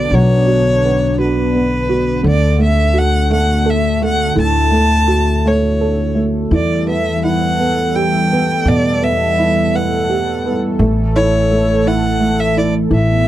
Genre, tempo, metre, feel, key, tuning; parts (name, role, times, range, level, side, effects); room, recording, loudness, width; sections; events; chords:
six-eight pop ballad; 56 BPM (dotted quarters); 6/8; straight; A4 = 441 Hz
rich violin; melody; 0.0-13.3 s; B4 to A5; -18 LUFS; equal
felt-muted upright piano; accompaniment; 0.0-13.3 s; A2 to A4; -18 LUFS; right 2 dB
chorused pulse-width pad; sustained chords; 0.0-13.3 s; D3 to A4; -19 LUFS; equal
upright bass; bass; 0.0-13.3 s; A1 to E2; -18 LUFS; equal
light reverb; dry, close 1970s-style studio recording; -12 LUFS; side -13 dB against mid
0.0-13.3 A section
0.0 Bmadd9; 2.2 D; 6.5 Emadd9; 10.8 A